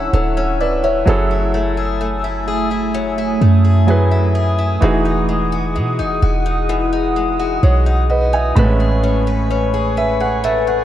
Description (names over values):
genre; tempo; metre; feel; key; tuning
R&B; 64 BPM; 4/4; straight; E major; A4 = 440 Hz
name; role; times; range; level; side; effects
warm concert grand piano; accompaniment; 0.0-10.8 s; A2 to G#5; -20 LUFS; right 3 dB; none
glassy FM pad; sustained chords; 0.0-10.8 s; A3 to E6; -22 LUFS; right 1 dB; ensemble chorus, built-in reverb
picked old ladder-braced acoustic guitar; arpeggios; 0.0-10.8 s; D3 to B4; -21 LUFS; left 6 dB; tape echo
clean 808-style bass; bass; 0.0-10.8 s; D1 to B2; -17 LUFS; equal; none
room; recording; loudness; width
light reverb, small room ambience; worn, warbling old tape, cassette tape, warbly pitch drift; -14 LUFS; side -12 dB against mid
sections
0.0-10.8 A section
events
grand piano fill 9.5-10.8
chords
0.0 Dmaj9; 1.1 F#m9; 4.8 Emaj9; 8.6 Amaj9